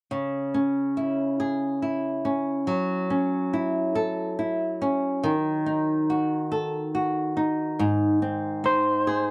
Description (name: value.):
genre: pop.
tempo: 47 BPM (dotted quarters).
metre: 6/8.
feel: straight.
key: C# minor.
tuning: A4 = 439 Hz.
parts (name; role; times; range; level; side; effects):
flamenco guitar; accompaniment; 0.1-9.3 s; G#2 to A4; -26 LUFS; equal; none.
electric slide guitar; melody; 8.7-9.3 s; B#4; -24 LUFS; equal; none.
room: light reverb.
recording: dry, close 1970s-style studio recording.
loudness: -26 LUFS.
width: mono.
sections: 0.1-9.3 A section.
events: none.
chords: 0.1 C#m; 2.7 F#m7; 5.2 D#dim; 7.8 G#.